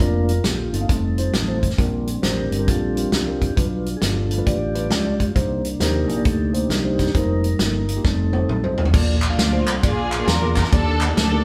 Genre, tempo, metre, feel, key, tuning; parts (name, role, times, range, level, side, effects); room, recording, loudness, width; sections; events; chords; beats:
uptempo gospel; 134 BPM; 4/4; swing 64% on 8ths; Bb major; A4 = 441 Hz
mellow tine electric piano; accompaniment; 0.0-11.4 s; Bb2 to F5; -30 LUFS; equal
mellow tonewheel organ; sustained chords; 0.0-8.9 s; C3 to D5; -27 LUFS; equal; slow rotary speaker
fingered electric bass; bass; 0.0-11.4 s; F1 to E2; -25 LUFS; equal
natural country drum kit; drums; 0.0-11.3 s; crash cymbal, hi-hat, kick drum, ride cymbal, snare drum, toms; -24 LUFS; equal
dark studio string section; melody; 9.2-11.4 s; A3 to Bb4; -26 LUFS; equal
group handclap; percussion; 9.2-11.1 s; -30 LUFS; equal
moderate stone room reverb, RT60 1.0 s; band playing live in one room; -20 LUFS; mono
0.0-8.9 A section; 8.9-11.4 B section
tonewheel organ solo 0.0-8.9; drum fill 8.0-8.9
0.0 Bb/F; 0.9 F7; 1.8 Bb6; 3.6 G7; 5.4 Cm7; 7.2 F7sus4; 8.0 F7; 8.9 Bbmaj7; 9.8 Bb7; 10.7 Ebmaj7
0.44 0.89 1.33 | 1.78 2.23 2.67 3.12 | 3.57 4.02 4.46 4.91 | 5.36 5.81 6.25 6.70 | 7.15 7.60 8.04 8.49 | 8.94 9.39 9.83 10.28 | 10.72 11.17